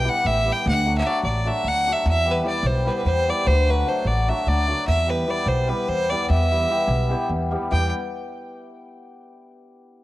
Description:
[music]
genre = balkan folk, Balkan wedding band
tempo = 297 BPM (eighths)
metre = 7/8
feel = straight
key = E minor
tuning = A4 = 440 Hz
[part]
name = clear fiddle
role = melody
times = 0.0-7.9 s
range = B4 to G5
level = -23 LUFS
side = right 1 dB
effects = cassette tape
[part]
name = hammered dulcimer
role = accompaniment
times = 0.0-7.9 s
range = F#3 to G4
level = -27 LUFS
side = left 2 dB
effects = cassette tape
[part]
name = upright bass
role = bass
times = 0.0-7.9 s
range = A1 to E2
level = -22 LUFS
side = equal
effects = none
[sound]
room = small room ambience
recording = home recording on cassette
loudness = -19 LUFS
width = side -16 dB against mid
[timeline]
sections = 0.0-7.7 A section; 7.7-9.1 B section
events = none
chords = 0.0 Em; 0.6 D; 2.1 Em; 3.5 D; 4.9 Em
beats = 0.04 0.24 0.45 | 0.65 0.85 1.05 1.25 1.45 1.66 1.86 | 2.06 2.26 2.46 2.66 2.87 3.07 3.27 | 3.47 3.67 3.88 4.08 4.28 4.48 4.68 | 4.88 5.09 5.29 5.49 5.69 5.89 6.09 | 6.30 6.50 6.70 6.90 7.11 7.31 7.51 | 7.71

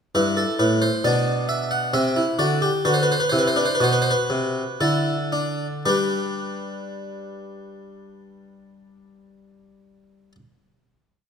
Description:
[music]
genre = classical, baroque-style 3-part fugue for harpsichord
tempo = 55-68 BPM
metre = 3/4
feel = straight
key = G major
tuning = A4 = 440 Hz
[part]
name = harpsichord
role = solo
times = 0.1-10.4 s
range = G2 to F#5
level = -20 LUFS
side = equal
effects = none
[sound]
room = wet recital hall reverb, RT60 1.7 s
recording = none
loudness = -19 LUFS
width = side -7 dB against mid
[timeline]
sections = 0.2-5.8 exposition; 5.8-9.1 final chord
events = slowing down 0.2-7.5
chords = 0.2 G; 1.9 Cadd9; 2.9 D7; 5.8 G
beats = | 0.15 1.04 1.94 | 2.85 3.80 4.80 | 5.85 6.93 8.00

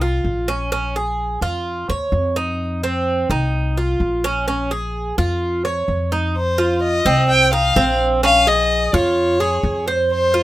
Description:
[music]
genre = latin, Cuban son and guajira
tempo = 128 BPM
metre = 4/4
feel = straight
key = unclear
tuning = A4 = 441 Hz
[part]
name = Cuban tres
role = arpeggios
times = 0.0-10.4 s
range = C4 to Db5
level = -19 LUFS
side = right 2 dB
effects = none
[part]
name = upright bass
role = bass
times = 0.0-10.4 s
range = Bb1 to F2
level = -22 LUFS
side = left 1 dB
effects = none
[part]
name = warm violin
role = melody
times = 6.4-10.4 s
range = C5 to G5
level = -17 LUFS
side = left 2 dB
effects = none
[sound]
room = light reverb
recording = rough home demo mix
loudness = -16 LUFS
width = side -15 dB against mid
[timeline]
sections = 0.0-6.4 A section; 6.4-10.4 B section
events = none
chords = 0.0 F5; 0.7 Bbm7; 2.6 F5; 4.5 Bbm7; 6.4 F5; 8.2 Bbm7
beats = 0.25 | 0.72 1.19 1.66 2.13 | 2.60 3.07 3.54 4.00 | 4.47 4.94 5.41 5.88 | 6.35 6.82 7.29 7.76 | 8.23 8.70 9.17 9.64 | 10.11

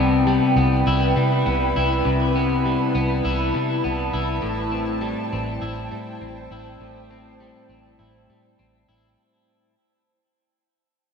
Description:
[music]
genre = dream pop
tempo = 101 BPM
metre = 4/4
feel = straight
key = unclear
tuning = A4 = 440 Hz
[part]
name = ethereal airy pad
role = sustained chords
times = 0.0-9.1 s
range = E4 to B5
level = -25 LUFS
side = right 2 dB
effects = ensemble chorus, built-in reverb
[part]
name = electric guitar at the edge of break-up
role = arpeggios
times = 0.0-9.7 s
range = A2 to E4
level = -22 LUFS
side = left 4 dB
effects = analog chorus, ping-pong delay
[part]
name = vintage muted fingered electric bass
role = bass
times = 0.0-9.1 s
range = A1 to C3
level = -26 LUFS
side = right 1 dB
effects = none
[sound]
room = moderate lush hall reverb, RT60 2.1 s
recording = none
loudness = -19 LUFS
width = side -6 dB against mid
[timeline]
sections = 0.0-9.2 A section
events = fade-out 0.0-9.2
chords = 0.0 Cmaj7; 4.4 Am7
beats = 0.27 0.86 1.46 | 2.05 2.64 3.24 3.83 | 4.43 5.02 5.62 6.21 | 6.80 7.40 7.99 8.59

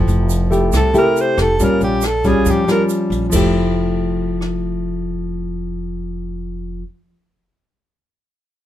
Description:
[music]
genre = bossa nova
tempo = 139 BPM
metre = 4/4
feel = straight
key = F major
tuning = A4 = 440 Hz
[part]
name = nylon-string guitar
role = accompaniment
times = 0.0-6.9 s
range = Bb2 to G4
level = -18 LUFS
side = left 2 dB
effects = none
[part]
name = upright bass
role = bass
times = 0.0-6.8 s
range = F1 to F2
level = -21 LUFS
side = right 1 dB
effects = none
[part]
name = jazz brush drum kit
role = drums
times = 0.1-4.5 s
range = crash cymbal, hi-hat, kick drum, rim click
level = -24 LUFS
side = equal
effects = none
[part]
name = egg shaker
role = percussion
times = 0.1-3.4 s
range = none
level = -30 LUFS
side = right 10 dB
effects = none
[part]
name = breathy alto saxophone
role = melody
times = 0.8-2.8 s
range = G4 to C5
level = -18 LUFS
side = right 2 dB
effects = none
[sound]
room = little or no reverb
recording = minimal, uncompressed stereo recording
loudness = -15 LUFS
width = side -12 dB against mid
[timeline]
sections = 0.0-3.3 A section; 3.3-6.8 B section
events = alto saxophone solo 0.0-3.3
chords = 0.0 Fmaj9; 1.6 Bbm6; 3.3 Fmaj9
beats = 0.30 0.73 1.17 | 1.60 2.03 2.46 2.89 | 3.33 3.76 4.19 4.62 | 5.05 5.49 5.92 6.35

